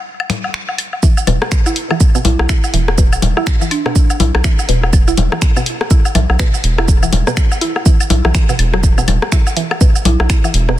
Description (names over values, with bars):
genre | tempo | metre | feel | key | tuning
minimal techno | 123 BPM | 4/4 | swing 60% on 16ths | unclear | A4 = 440 Hz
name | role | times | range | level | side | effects
electronic woodblock, congas and rim click | percussion | 0.2-10.8 s | none | -19 LUFS | left 4 dB | soft clipping on snare, ping-pong delay
house drum kit | drums | 0.3-10.7 s | finger snaps, hi-hat, shaker | -22 LUFS | right 2 dB | soft clipping on snare
mallet-like synth pluck | riff | 1.0-10.7 s | B2 to E4 | -21 LUFS | right 2 dB | chorus, phaser, sidechain pumping, digital delay
electronic kick drum | drums | 1.0-10.4 s | none | -11 LUFS | equal | none
rubbery square bass | bass | 1.3-10.8 s | E1 to B1 | -14 LUFS | equal | sidechain pumping
folk marimba with medium hard mallets | melody | 2.2-3.9, 10.1-10.2 s | D4 to E4 | -23 LUFS | right 4 dB | ping-pong delay
room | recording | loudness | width
little or no reverb | dense, heavily limited modern master | -11 LUFS | side -14 dB against mid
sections
0.0-10.8 A section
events
break 0.0-1.0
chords
0.0 E5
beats
0.05 0.54 | 1.03 1.52 2.00 2.49 | 2.98 3.47 3.96 4.44 | 4.93 5.42 5.91 6.39 | 6.88 7.37 7.86 8.35 | 8.83 9.32 9.81 10.30 | 10.79